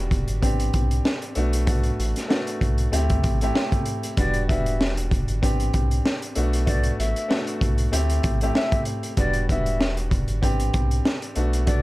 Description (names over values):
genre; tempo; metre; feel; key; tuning
hip hop, boom-bap hip-hop; 96 BPM; 4/4; swing 56% on 16ths; E minor; A4 = 440 Hz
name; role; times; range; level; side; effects
warm upright piano; accompaniment; 0.0-11.8 s; G3 to G4; -28 LUFS; equal; high-pass filter, low-pass filter
sub bass with octave; bass; 0.0-11.8 s; E1 to D2; -24 LUFS; equal; none
crunchy breakbeat drum kit; drums; 0.1-11.8 s; hi-hat, kick drum, snare drum; -24 LUFS; equal; none
mellow silver concert flute; melody; 4.2-11.8 s; D5 to E5; -29 LUFS; left 1 dB; high-pass filter, low-pass filter, plate reverb
room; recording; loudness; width
little or no reverb; none; -20 LUFS; side -18 dB against mid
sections
0.0-11.8 A section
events
none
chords
0.4 Am11; 1.4 Bm7; 2.9 D9sus4; 4.2 Em7; 5.4 Am11; 6.4 Bm7; 7.9 D9sus4; 9.2 Em7; 10.4 Am11